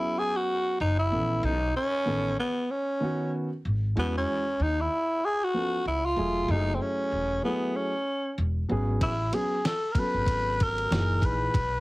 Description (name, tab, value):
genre	hip hop, jazz-hop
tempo	95 BPM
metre	4/4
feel	swing 57% on 16ths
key	F# dorian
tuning	A4 = 440 Hz
part	growling tenor saxophone	melody	0.0-11.8 s	B3 to B4	-27 LUFS	equal	none
part	dark concert grand piano	accompaniment	0.0-11.6 s	A#2 to E5	-32 LUFS	equal	none
part	upright bass	bass	0.8-11.8 s	E1 to E2	-29 LUFS	equal	none
part	dusty soul sampler-style drum kit	drums	9.0-11.7 s	hi-hat, kick drum, ride cymbal, snare drum	-29 LUFS	equal	none
room	light reverb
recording	heavily compressed radio sound, multiband compression, vinyl crackle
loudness	-25 LUFS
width	side -20 dB against mid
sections	0.0-11.8 A section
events	none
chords	0.0 Amaj13 (rootless); 0.8 F#7; 1.4 B9; 4.0 E69; 5.9 C#; 6.5 F#m9; 8.4 E; 9.0 Amaj13; 10.9 F#13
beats	0.17 0.80 | 1.43 2.07 2.70 3.33 | 3.96 4.59 5.22 5.86 | 6.49 7.12 7.75 8.38 | 9.01 9.64 10.28 10.91 | 11.54